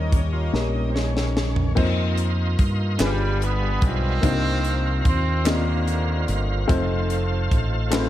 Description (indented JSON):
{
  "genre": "slow gospel",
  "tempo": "49 BPM (dotted quarters)",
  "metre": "6/8",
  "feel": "straight",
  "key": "unclear",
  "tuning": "A4 = 445 Hz",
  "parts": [
    { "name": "dark upright piano", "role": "accompaniment", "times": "0.0-8.1 s", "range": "G2 to Eb5", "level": "-27 LUFS", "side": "left 3 dB", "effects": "none" },
    { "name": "bright tonewheel organ", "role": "sustained chords", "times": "0.0-8.1 s", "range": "G3 to C6", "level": "-31 LUFS", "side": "right 2 dB", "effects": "slow rotary speaker, overdrive, chorus vibrato" },
    { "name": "rich studio string section", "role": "sustained chords", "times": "0.0-1.7 s", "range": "G4 to Eb5", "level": "-37 LUFS", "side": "left 2 dB", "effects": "none" },
    { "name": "fingered electric bass", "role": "bass", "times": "0.0-8.1 s", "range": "F1 to G2", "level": "-23 LUFS", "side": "equal", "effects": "none" },
    { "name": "tight funk drum kit", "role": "drums", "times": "0.1-8.1 s", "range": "crash cymbal, hi-hat, kick drum, snare drum, toms", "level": "-24 LUFS", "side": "equal", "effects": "none" },
    { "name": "warm horn section", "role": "melody", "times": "3.0-6.7 s", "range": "D3 to C4", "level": "-28 LUFS", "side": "right 2 dB", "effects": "none" },
    { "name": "group handclap", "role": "percussion", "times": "3.0-8.1 s", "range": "none", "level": "-33 LUFS", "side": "right 3 dB", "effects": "none" }
  ],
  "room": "light reverb, small room ambience",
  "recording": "none",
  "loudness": "-20 LUFS",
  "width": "side -13 dB against mid",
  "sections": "0.0-1.8 A section; 1.8-8.1 B section",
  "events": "tonewheel organ solo 0.0-1.8; drum fill 0.5-1.8",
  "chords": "0.0 Eb7; 1.8 F7sus4; 3.0 G7b9; 4.2 Cm11; 6.7 F7",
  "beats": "0.53 | 1.77 3.00 | 4.23 5.46 | 6.70 7.93"
}